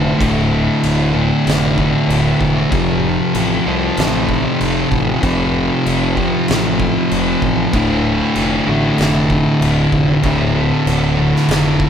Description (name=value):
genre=stoner and doom metal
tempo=96 BPM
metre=4/4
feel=straight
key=D minor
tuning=A4 = 439 Hz
part: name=thick fuzz guitar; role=riff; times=0.0-11.9 s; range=D2 to F3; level=-14 LUFS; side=equal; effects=distortion
part: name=growling fingered electric bass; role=bass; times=0.0-11.9 s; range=D1 to C2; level=-22 LUFS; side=equal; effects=overdrive
part: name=oversized low-tuned drum kit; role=drums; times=0.2-11.9 s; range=crash cymbal, kick drum, snare drum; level=-22 LUFS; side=equal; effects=none
room=moderate small room reverb, RT60 0.5 s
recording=band playing live in one room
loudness=-13 LUFS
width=side -8 dB against mid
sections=0.0-11.9 A section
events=none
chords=0.0 Dm; 2.7 F; 7.7 Dm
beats=| 0.20 0.83 1.46 2.08 | 2.71 3.34 3.97 4.59 | 5.22 5.85 6.48 7.11 | 7.73 8.36 8.98 9.61 | 10.24 10.86 11.49